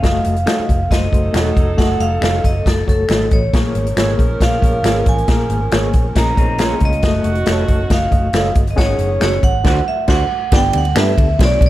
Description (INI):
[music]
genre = uptempo 1960s-style soul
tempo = 137 BPM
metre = 4/4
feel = straight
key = unclear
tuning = A4 = 440 Hz
[part]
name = vibraphone with hard mallets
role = melody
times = 0.0-11.7 s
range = A4 to Bb5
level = -21 LUFS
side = right 2 dB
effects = none
[part]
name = barky reed electric piano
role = accompaniment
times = 0.0-11.7 s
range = G2 to Gb5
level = -23 LUFS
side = left 3 dB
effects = overdrive, tremolo
[part]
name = electric guitar through a small old amp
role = riff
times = 0.0, 6.2-7.0 s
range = Bb3 to F4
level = -27 LUFS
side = left 5 dB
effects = vibrato effect
[part]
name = vintage muted fingered electric bass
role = bass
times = 0.0-11.7 s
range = Fb1 to G2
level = -19 LUFS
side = equal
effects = none
[part]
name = swinging big-band drum kit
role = drums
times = 0.0-11.7 s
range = crash cymbal, hi-hat, kick drum, ride cymbal, snare drum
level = -16 LUFS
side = equal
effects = none
[part]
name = electric guitar through a small old amp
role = stabs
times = 0.5-11.1 s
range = D4 to Db5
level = -24 LUFS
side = right 6 dB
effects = ensemble chorus
[part]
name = finger snap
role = percussion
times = 0.5-11.1 s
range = none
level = -26 LUFS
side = left 3 dB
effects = none
[part]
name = clear saxophone section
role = second line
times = 0.9-10.2 s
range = D3 to Bb4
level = -26 LUFS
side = right 2 dB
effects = none
[sound]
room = little or no reverb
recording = none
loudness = -13 LUFS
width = side -15 dB against mid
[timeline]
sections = 0.0-10.5 A section; 10.5-11.7 B section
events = band accent 9.7-10.5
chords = 0.0 Gbm6; 3.5 Bbm7; 7.0 Gbm6; 8.8 Ab7sus4; 9.7 D7; 10.5 G